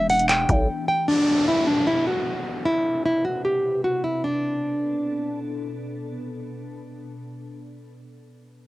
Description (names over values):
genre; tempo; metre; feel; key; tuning
hip hop, trap; 152 BPM; 4/4; half-time; B phrygian; A4 = 440 Hz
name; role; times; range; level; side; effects
nylon-string guitar; melody; 0.0-5.4 s; D4 to G5; -21 LUFS; equal; cassette tape
glassy FM pad; sustained chords; 0.0-8.2 s; B2 to B4; -33 LUFS; left 1 dB; ensemble chorus, built-in reverb, cassette tape
growling 808-style bass; bass; 0.0-0.7 s; E1 to B1; -24 LUFS; equal; none
booming analog drum machine; drums; 0.1-0.7 s; handclaps, hi-hat, kick drum; -22 LUFS; equal; overdrive, cassette tape
downlifter; sound effects; 1.1-4.2 s; none; -31 LUFS; equal; none
room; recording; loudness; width
light reverb; home recording on cassette; -21 LUFS; side -17 dB against mid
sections
0.0-1.1 A section; 1.1-4.2 B section; 4.2-7.4 C section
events
break 0.7-1.1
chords
0.0 Em7; 1.1 Bm7; 2.7 Cmaj7; 4.2 Bm7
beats
0.29 0.69 | 1.08 1.48 1.87 2.27 | 2.66 3.06 3.45 3.84 | 4.24 4.63 5.03 5.42 | 5.82 6.21 6.61 7.00